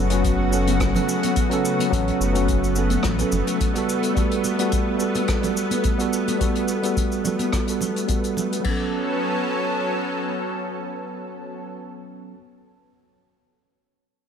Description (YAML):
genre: sunset chillout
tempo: 107 BPM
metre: 4/4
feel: swing 53% on 16ths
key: A mixolydian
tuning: A4 = 439 Hz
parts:
  - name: tine electric piano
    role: accompaniment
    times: 0.0-12.4 s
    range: F#3 to A4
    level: -24 LUFS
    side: equal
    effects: auto-pan, low-pass filter, tape echo
  - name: lush unison pad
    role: sustained chords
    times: 0.0-11.7 s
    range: C#3 to A4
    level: -26 LUFS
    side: right 1 dB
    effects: chorus
  - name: warm sub bass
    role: bass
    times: 0.0-3.4 s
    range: F#1 to A1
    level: -24 LUFS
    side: equal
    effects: none
  - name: vintage brush drum kit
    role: drums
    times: 0.1-8.8 s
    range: cabasa, crash cymbal, hi-hat, rim click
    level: -31 LUFS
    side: left 2 dB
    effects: none
  - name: electronic kick drum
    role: drums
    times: 0.2-8.8 s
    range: none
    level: -24 LUFS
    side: equal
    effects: none
  - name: congas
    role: percussion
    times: 0.7-8.5 s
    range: none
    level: -30 LUFS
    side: right 6 dB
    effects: none
room: light reverb, studio ambience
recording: none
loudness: -20 LUFS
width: side -8 dB against mid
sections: 0.0-8.6 A section; 8.6-10.9 B section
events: filter sweep on tine electric piano 0.0-8.6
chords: 0.0 A69; 3.9 Gmaj9; 8.6 A69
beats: 0.24 0.80 1.36 | 1.92 2.48 3.04 3.60 | 4.16 4.72 5.28 5.84 | 6.41 6.97 7.53 8.09 | 8.65 9.21 9.77 10.33